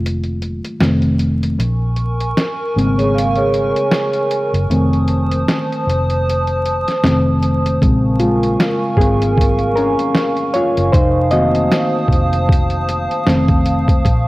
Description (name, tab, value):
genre	lo-fi hip hop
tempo	77 BPM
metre	4/4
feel	swing 58% on 16ths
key	unclear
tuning	A4 = 438 Hz
part	reed electric piano	accompaniment	0.0-14.1 s	Db3 to Eb5	-18 LUFS	left 1 dB	cassette tape
part	vintage muted fingered electric bass	bass	0.0-14.3 s	F1 to Bb1	-18 LUFS	equal	none
part	lo-fi sampler-style drum kit	drums	0.1-14.3 s	hi-hat, kick drum, snare drum	-17 LUFS	equal	overdrive, cassette tape
part	warbly tape-like pad	sustained chords	1.8-14.3 s	Bb4 to Eb6	-20 LUFS	right 1 dB	chorus, built-in reverb, cassette tape
part	vibraphone with soft mallets	second line	3.0-4.5 s	Ab4 to F5	-18 LUFS	right 1 dB	cassette tape, tape echo
room	light reverb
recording	home recording on cassette, vinyl crackle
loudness	-13 LUFS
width	side -19 dB against mid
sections	0.0-14.3 A section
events	break 0.0-7.8; reed electric piano solo 0.0-14.3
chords	0.0 F7; 1.6 Bbm7; 4.7 F7; 7.8 Bbm7; 10.9 F7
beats	0.02 0.80 | 1.58 2.36 3.14 3.92 | 4.70 5.48 6.26 7.04 | 7.82 8.60 9.38 10.15 | 10.93 11.71 12.49 13.27 | 14.05